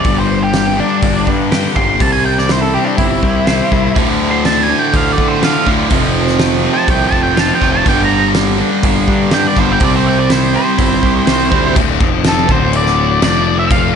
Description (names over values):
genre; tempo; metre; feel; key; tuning
quiet-loud alternative rock; 123 BPM; 4/4; straight; D minor; A4 = 439 Hz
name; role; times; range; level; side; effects
octave-fuzz lead guitar; melody; 0.0-13.9 s; D4 to C6; -17 LUFS; right 2 dB; distortion, slapback echo
twangy electric guitar; arpeggios; 0.0-11.8 s; D2 to C5; -22 LUFS; right 4 dB; analog chorus
thick fuzz guitar; riff; 0.0-13.9 s; D2 to C4; -17 LUFS; left 12 dB; distortion
loose indie drum kit; drums; 0.0-13.8 s; crash cymbal, hi-hat, kick drum, snare drum; -17 LUFS; right 1 dB; none
fuzz picked electric bass; bass; 0.1-13.9 s; D1 to D3; -18 LUFS; equal; overdrive
tight distorted guitar; riff; 4.0-11.8 s; D2 to C4; -18 LUFS; right 12 dB; distortion
room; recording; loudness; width
moderate lush hall reverb, RT60 1.6 s, small room ambience; big arena sound, nothing above 10.8 kHz; -10 LUFS; side -7 dB against mid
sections
0.0-11.8 A section; 11.8-14.0 B section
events
lead electric guitar solo 0.0-11.8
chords
0.1 Gm; 2.0 C; 4.0 Dm; 5.9 F; 7.9 Gm; 9.8 C; 11.8 Dm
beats
| 0.06 0.54 1.03 1.52 | 2.01 2.50 2.99 3.48 | 3.96 4.45 4.94 5.43 | 5.92 6.40 6.89 7.38 | 7.87 8.36 8.84 9.33 | 9.82 10.31 10.79 11.28 | 11.77 12.25 12.74 13.22 | 13.71